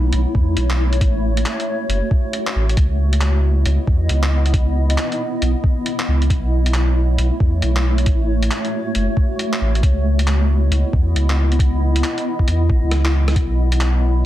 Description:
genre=future garage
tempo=136 BPM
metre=4/4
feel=swing 63% on 16ths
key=C# minor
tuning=A4 = 441 Hz
part: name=granular cloud pad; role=sustained chords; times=0.0-14.3 s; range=A3 to D#5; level=-23 LUFS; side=equal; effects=built-in reverb, sidechain pumping
part: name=warm sub bass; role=bass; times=0.0-14.2 s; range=F#1 to E2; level=-16 LUFS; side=equal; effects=sidechain pumping
part: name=lo-fi sampler-style drum kit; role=drums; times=0.1-13.9 s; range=handclaps, hi-hat, rim click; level=-26 LUFS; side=equal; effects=soft clipping on snare
part: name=electronic kick drum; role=drums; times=0.3-13.5 s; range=none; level=-16 LUFS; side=equal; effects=none
room=digital ambience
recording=dense, heavily limited modern master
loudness=-15 LUFS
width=side -13 dB against mid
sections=0.0-14.3 A section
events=drum fill 12.9-13.4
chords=0.0 B9sus4; 1.0 A6; 2.8 C#m9; 6.3 B9sus4; 8.1 A6; 9.8 C#m9; 13.4 B9sus4

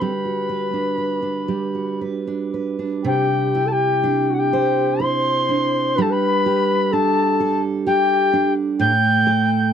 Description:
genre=celtic folk, Celtic slow air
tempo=62 BPM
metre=3/4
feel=rubato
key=G major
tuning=A4 = 440 Hz
part: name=wooden whistle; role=melody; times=0.0-9.7 s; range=F#5 to G6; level=-21 LUFS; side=left 2 dB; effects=none
part: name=wooden flute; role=second line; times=0.0-9.7 s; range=F#4 to G5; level=-23 LUFS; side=left 6 dB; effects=none
part: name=picked steel-string acoustic guitar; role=accompaniment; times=0.0-9.7 s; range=A2 to C5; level=-21 LUFS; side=right 5 dB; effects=none
room=light reverb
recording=dry, close 1970s-style studio recording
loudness=-17 LUFS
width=side -8 dB against mid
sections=0.0-3.0 A section; 3.0-9.7 B section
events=none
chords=0.0 Gmaj7; 3.0 Cadd9; 6.0 Gsus2; 8.8 N.C.

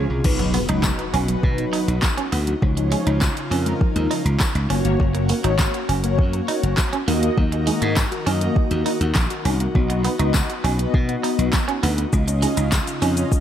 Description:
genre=dance-pop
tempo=101 BPM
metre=4/4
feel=straight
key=unclear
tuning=A4 = 440 Hz
part: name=mellow synth brass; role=accompaniment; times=0.0-13.4 s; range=E#3 to D#5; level=-26 LUFS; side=left 2 dB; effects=chorus, sidechain pumping
part: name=airy breathy pad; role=sustained chords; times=0.0-13.4 s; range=C#3 to A#4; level=-30 LUFS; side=left 1 dB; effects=chorus, sidechain pumping
part: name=slap bass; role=bass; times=0.0-13.2 s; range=F#1 to B2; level=-21 LUFS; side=equal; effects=sidechain pumping
part: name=wide unison pluck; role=arpeggios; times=0.2-13.4 s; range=D#3 to F#5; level=-32 LUFS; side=left 3 dB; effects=none
part: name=smooth R&B drum kit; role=drums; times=0.2-13.4 s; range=crash cymbal, handclaps, hi-hat, kick drum, shaker, snare drum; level=-22 LUFS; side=equal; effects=overdrive
part: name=impact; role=sound effects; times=0.2-2.6 s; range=none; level=-31 LUFS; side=equal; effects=none
part: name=clean electric guitar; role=riff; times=0.4-13.1 s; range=G#3 to D#4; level=-29 LUFS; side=right 6 dB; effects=analog chorus
part: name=tambourine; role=percussion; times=0.8-12.9 s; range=none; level=-33 LUFS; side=left 7 dB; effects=none
room=light reverb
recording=dark, warm production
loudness=-18 LUFS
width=side -10 dB against mid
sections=0.2-13.4 A section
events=impact 0.2-2.6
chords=0.2 B; 2.6 C#add9; 4.7 F#; 7.1 D#m; 9.8 B; 12.1 C#add9

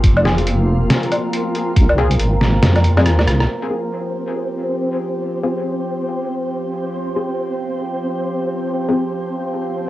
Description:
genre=deep dubstep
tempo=139 BPM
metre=4/4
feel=swing 60% on 16ths, half-time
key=F minor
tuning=A4 = 440 Hz
part: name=overtone-sweeping drone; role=sustained chords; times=0.0-9.9 s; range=F3 to Bb4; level=-24 LUFS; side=right 1 dB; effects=chorus, built-in reverb, vintage 12-bit sampler grit
part: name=deep soft wobble bass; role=bass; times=0.0-3.5 s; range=F1 to F2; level=-15 LUFS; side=equal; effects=chorus
part: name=electronic kick drum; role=drums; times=0.0-1.9 s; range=none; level=-12 LUFS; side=equal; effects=cassette tape
part: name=trip hop sampler-style drum kit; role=drums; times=0.0-3.5 s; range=hi-hat, rim click, snare drum, woodblock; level=-18 LUFS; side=equal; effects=cassette tape
part: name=flickering grainy texture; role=texture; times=0.0-9.9 s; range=Bb3 to C5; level=-24 LUFS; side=equal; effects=built-in reverb
part: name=filtered dub chord stab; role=stabs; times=0.3-9.1 s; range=C4 to Ab4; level=-23 LUFS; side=left 3 dB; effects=chorus, dub echo
room=wet booth ambience, RT60 0.2 s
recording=home recording on cassette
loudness=-16 LUFS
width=side -15 dB against mid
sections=0.0-3.5 A section; 3.5-9.9 B section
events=kick drops out 2.6-3.5; drum fill 2.6-3.5; band accent 3.4; filter sweep on synth stab 3.5-9.9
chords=0.0 Fm

